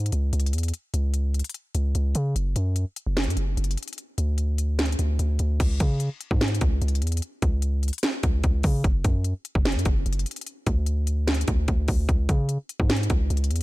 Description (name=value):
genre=hip hop, trap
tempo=148 BPM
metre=4/4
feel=half-time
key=C# phrygian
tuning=A4 = 440 Hz
part: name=long sustained 808-style bass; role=bass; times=0.0-13.6 s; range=F#1 to C#3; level=-23 LUFS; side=equal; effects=none
part: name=trap drum kit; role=drums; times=0.1-13.6 s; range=crash cymbal, hi-hat, kick drum, snare drum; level=-25 LUFS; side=equal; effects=none
room=little or no reverb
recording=none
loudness=-22 LUFS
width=side -19 dB against mid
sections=0.0-5.6 A section; 5.6-13.6 B section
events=none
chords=none